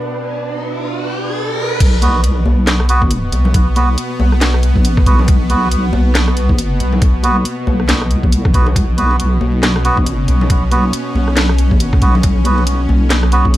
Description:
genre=deep dubstep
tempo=138 BPM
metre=4/4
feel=swing 58% on 16ths, half-time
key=B minor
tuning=A4 = 442 Hz
part: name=bowed-like drone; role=sustained chords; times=0.0-13.6 s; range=B2 to D4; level=-22 LUFS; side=equal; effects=built-in reverb
part: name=riser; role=sound effects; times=0.0-1.8 s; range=none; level=-22 LUFS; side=equal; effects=none
part: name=flickering grainy texture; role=texture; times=0.0-1.8 s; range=B4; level=-29 LUFS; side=right 2 dB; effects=built-in reverb
part: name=deep soft wobble bass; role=bass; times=1.8-13.6 s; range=B1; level=-14 LUFS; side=equal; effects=chorus
part: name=electronic kick drum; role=drums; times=1.8-13.5 s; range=none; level=-13 LUFS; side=equal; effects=studio reverb
part: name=garage drum kit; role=drums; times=1.8-13.6 s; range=crash cymbal, handclaps, hi-hat, rim click, snare drum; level=-18 LUFS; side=equal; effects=studio reverb
part: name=melodica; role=stabs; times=2.0-13.5 s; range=B3 to B4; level=-20 LUFS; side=right 2 dB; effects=dub echo
part: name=congas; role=percussion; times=2.0-13.5 s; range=none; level=-23 LUFS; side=left 3 dB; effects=dub echo
room=light reverb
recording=vinyl crackle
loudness=-11 LUFS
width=side -15 dB against mid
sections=0.0-1.8 A section; 1.8-13.6 B section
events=riser 0.0-1.8; drop 1.8-13.6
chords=0.0 Bm; 1.8 B5

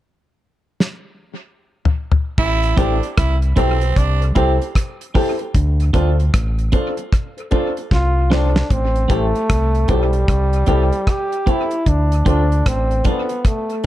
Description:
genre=roots reggae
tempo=76 BPM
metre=4/4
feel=swing 62% on 16ths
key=A minor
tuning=A4 = 441 Hz
part: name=damped 70s drum kit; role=drums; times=0.8-13.9 s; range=crash cymbal, hi-hat, kick drum, rim click, snare drum, toms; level=-17 LUFS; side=equal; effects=none
part: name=raspy tenor saxophone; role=second line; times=2.4-4.7 s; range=C4 to E4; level=-23 LUFS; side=right 5 dB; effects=tape echo
part: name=deep dub fingered electric bass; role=bass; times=2.4-13.0 s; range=A1 to D2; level=-17 LUFS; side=equal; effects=none
part: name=clean electric guitar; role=accompaniment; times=2.8-13.3 s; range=C4 to A4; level=-25 LUFS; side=right 2 dB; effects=tape echo
part: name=dark grand piano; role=stabs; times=2.8-13.9 s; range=D4 to C5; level=-24 LUFS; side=left 3 dB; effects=none
part: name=brilliant trombone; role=melody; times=7.9-13.9 s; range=G3 to G4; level=-21 LUFS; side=equal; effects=tape echo
room=light reverb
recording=dark, warm production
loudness=-15 LUFS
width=side -14 dB against mid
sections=0.0-2.4 A section; 2.4-8.7 B section; 8.7-13.9 C section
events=drum fill 0.8-2.4, 7.9-8.7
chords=0.0 N.C.; 2.4 Am7; 5.5 Dm7; 8.7 Am7; 11.9 Dm7

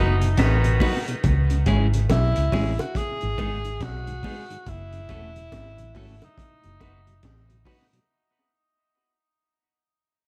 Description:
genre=roots reggae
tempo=70 BPM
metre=4/4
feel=swing 61% on 16ths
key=unclear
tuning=A4 = 440 Hz
part: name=warm tenor saxophone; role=melody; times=0.0-7.5 s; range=D#4 to G#4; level=-35 LUFS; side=equal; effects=tape echo, plate reverb
part: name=clear horn section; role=second line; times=0.0-1.0 s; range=B2 to F#4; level=-32 LUFS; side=equal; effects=tape echo, plate reverb
part: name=clean electric guitar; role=accompaniment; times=0.0-7.9 s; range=G#3 to B4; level=-34 LUFS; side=equal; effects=spring reverb, tape echo, plate reverb
part: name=mellow tonewheel organ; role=accompaniment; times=0.0-8.0 s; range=F#2 to F#4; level=-36 LUFS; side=equal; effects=chorus vibrato, slow rotary speaker, plate reverb
part: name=vintage muted fingered electric bass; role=bass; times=0.0-7.6 s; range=E1 to C#2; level=-26 LUFS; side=equal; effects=none
part: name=crunchy breakbeat drum kit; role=drums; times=0.2-8.1 s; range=hi-hat, kick drum, snare drum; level=-29 LUFS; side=equal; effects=tape echo
part: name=bongos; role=percussion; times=0.8-7.9 s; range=none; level=-35 LUFS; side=equal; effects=none
room=light reverb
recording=vinyl crackle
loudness=-23 LUFS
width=mono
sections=0.0-8.1 A section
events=fade-out 0.0-8.1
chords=0.0 B; 1.2 C#m; 3.0 G#m; 4.7 F#m; 6.4 B

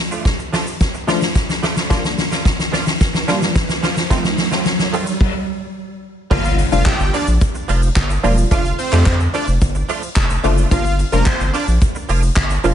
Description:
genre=dance-pop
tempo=109 BPM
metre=4/4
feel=straight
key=G minor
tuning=A4 = 436 Hz
part: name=wide unison pluck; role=accompaniment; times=0.0-12.7 s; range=D3 to G4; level=-23 LUFS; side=moving between left 9 dB and right 4 dB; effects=auto-pan, sidechain pumping, low-pass filter
part: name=riser and impact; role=sound effects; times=0.7-8.5 s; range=none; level=-26 LUFS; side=right 2 dB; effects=none
part: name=direct-recorded clean electric guitar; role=riff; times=0.1-12.7 s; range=Eb3 to F4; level=-26 LUFS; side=right 6 dB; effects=ensemble chorus, low-pass filter
part: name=soft-mallet drum kit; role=drums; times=0.1-12.7 s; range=crash cymbal, handclaps, hi-hat, kick drum, shaker, snare drum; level=-18 LUFS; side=equal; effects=none
part: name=supersaw chords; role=melody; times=6.3-11.7 s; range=Bb3 to G5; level=-24 LUFS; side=right 1 dB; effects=digital delay
part: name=saturated sub bass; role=bass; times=6.3-12.7 s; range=E1 to F2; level=-17 LUFS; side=equal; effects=sidechain pumping
room=small room ambience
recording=nothing above 10.8 kHz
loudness=-15 LUFS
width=side -10 dB against mid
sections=0.0-6.3 A section; 6.3-12.7 B section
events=build-up 0.0-6.3; drum fill 0.0-5.2; riser 0.7-6.3; stop 5.2-6.3; drop 6.3-12.7; impact 6.3-8.5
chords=0.0 Dm/F; 1.9 Gm7; 4.1 F7; 6.3 Gm7; 8.5 Dm/F; 10.7 Gm7

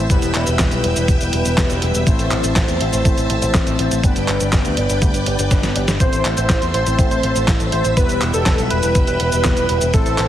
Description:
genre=italo disco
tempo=122 BPM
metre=4/4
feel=straight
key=A minor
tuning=A4 = 440 Hz
part: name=string machine, full ensemble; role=sustained chords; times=0.0-10.3 s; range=B4 to E6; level=-24 LUFS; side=right 1 dB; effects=ensemble chorus
part: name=analog synth brass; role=stabs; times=0.0-10.3 s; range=G3 to C5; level=-23 LUFS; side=left 2 dB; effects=chorus, vintage 12-bit sampler grit
part: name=picked electric bass with an envelope filter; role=bass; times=0.0-10.3 s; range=E1 to E2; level=-21 LUFS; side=equal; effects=none
part: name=clean 12-bit digital drum machine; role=drums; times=0.1-10.3 s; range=cabasa, handclaps, hi-hat, snare drum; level=-22 LUFS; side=equal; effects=none
part: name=electronic kick drum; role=drums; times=0.1-10.0 s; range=none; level=-18 LUFS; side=equal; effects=none
part: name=wide unison lead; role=melody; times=6.0-10.2 s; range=A4 to C5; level=-20 LUFS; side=right 1 dB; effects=tape echo
room=moderate plate reverb, RT60 2.0 s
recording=heavily compressed radio sound, multiband compression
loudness=-14 LUFS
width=side -11 dB against mid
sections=0.0-10.3 A section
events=drum fill 5.5-6.0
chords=0.1 Em; 2.1 Am; 4.0 G; 6.0 Am; 8.0 Em

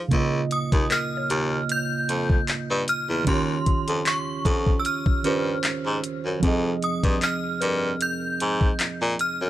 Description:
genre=contemporary R&B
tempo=76 BPM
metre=4/4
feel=swing 54% on 16ths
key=unclear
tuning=A4 = 439 Hz
part: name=muted felt-like synth keys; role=accompaniment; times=0.0-9.5 s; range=Db3 to Eb5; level=-27 LUFS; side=right 4 dB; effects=chorus
part: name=bright baritone saxophone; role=bass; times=0.1-9.5 s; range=Db2 to Bb2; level=-25 LUFS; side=left 1 dB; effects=none
part: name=smooth R&B drum kit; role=drums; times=0.1-9.4 s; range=handclaps, hi-hat, kick drum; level=-23 LUFS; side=left 1 dB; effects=none
part: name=synth chime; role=melody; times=0.5-9.5 s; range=C6 to G6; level=-28 LUFS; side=equal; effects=ensemble chorus, tape echo
part: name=mallet-like synth pluck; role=texture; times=0.9-9.5 s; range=Bb4 to Db5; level=-39 LUFS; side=left 5 dB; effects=none
room=little or no reverb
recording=none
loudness=-21 LUFS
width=side -14 dB against mid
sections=0.1-9.5 A section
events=none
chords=0.1 Db69; 3.3 Eb13; 6.4 Fm7

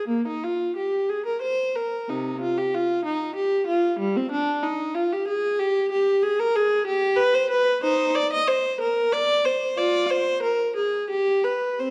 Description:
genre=classical, baroque-style suite movement for unaccompanied viola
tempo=93 BPM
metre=3/4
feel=rubato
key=Eb major, C minor from 5.9 s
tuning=A4 = 440 Hz
part: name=rich viola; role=solo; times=0.0-11.9 s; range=C3 to Eb5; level=-24 LUFS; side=equal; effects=none
room=wet recital hall reverb, RT60 1.3 s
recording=dark, warm production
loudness=-23 LUFS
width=mono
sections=0.0-11.9 A section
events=none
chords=none

